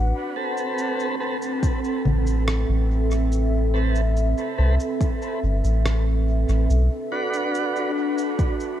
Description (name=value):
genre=ambient dub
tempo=71 BPM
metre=4/4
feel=straight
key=A dorian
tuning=A4 = 440 Hz
part: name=warbly tape-like pad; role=sustained chords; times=0.0-8.8 s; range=C4 to F#5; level=-26 LUFS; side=right 1 dB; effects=chorus, built-in reverb
part: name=soft dub sub bass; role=bass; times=0.0-6.9 s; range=G1 to C2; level=-20 LUFS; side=equal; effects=none
part: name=tonewheel organ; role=stabs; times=0.4-7.9 s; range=C4 to B4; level=-29 LUFS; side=right 2 dB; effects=slow rotary speaker, dub echo
part: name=electronic shaker, congas and rim click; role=drums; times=0.6-8.8 s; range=none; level=-30 LUFS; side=left 1 dB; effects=small room ambience, dub echo
part: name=electronic kick drum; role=drums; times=1.6-8.6 s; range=none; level=-22 LUFS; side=equal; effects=small room ambience
room=light reverb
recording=none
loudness=-20 LUFS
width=side -11 dB against mid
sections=0.0-8.8 A section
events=none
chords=0.0 Amadd9; 6.7 Bm